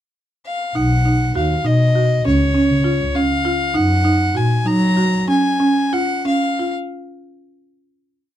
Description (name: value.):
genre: contemporary instrumental, chamber music in an uneven meter.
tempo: 199 BPM (eighths).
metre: 5/8.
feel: uneven beats.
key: Db mixolydian.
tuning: A4 = 441 Hz.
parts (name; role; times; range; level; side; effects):
clear violin; melody; 0.5-6.7 s; Db5 to Bb5; -21 LUFS; left 2 dB; none.
buzzing marimba with hard mallets; arpeggios; 0.8-6.9 s; Db4 to Gb4; -19 LUFS; right 2 dB; none.
dark double bass; bass; 0.8-5.2 s; Cb2 to Gb3; -18 LUFS; left 1 dB; none.
room: light reverb.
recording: dark, warm production.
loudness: -15 LUFS.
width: side -11 dB against mid.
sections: 0.0-0.8 pickup bar; 0.8-6.9 A section.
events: slowing down 3.8-6.9.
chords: 0.0 N.C.; 0.8 Cb; 2.3 Db; 3.8 Gb6; 5.3 Db.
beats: 0.15 0.45 | 0.75 1.05 1.35 1.65 1.95 | 2.25 2.55 2.85 3.15 3.45 | 3.75 4.05 4.36 4.66 4.97 | 5.29 5.60 5.93 6.26 6.59.